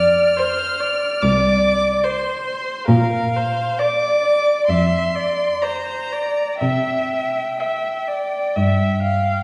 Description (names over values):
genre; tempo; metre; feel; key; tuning
classical, slow romantic movement for string quartet; 60-73 BPM; 4/4; rubato; unclear; A4 = 438 Hz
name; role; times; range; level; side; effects
rich violin; melody; 0.0-9.4 s; F5 to F6; -27 LUFS; equal; none
rich viola; accompaniment; 0.0-9.4 s; Bb4 to F5; -22 LUFS; equal; none
rich cello; bass; 0.0-9.3 s; C2 to C3; -22 LUFS; equal; none
rich violin; second line; 0.4-8.3 s; C5 to E5; -29 LUFS; equal; none
room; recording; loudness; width
wet recital hall reverb, RT60 1.5 s; heard from further back in the room, nothing above 10.5 kHz; -19 LUFS; mono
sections
0.0-9.4 A section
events
none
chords
0.0 F5; 2.9 Bb; 6.6 C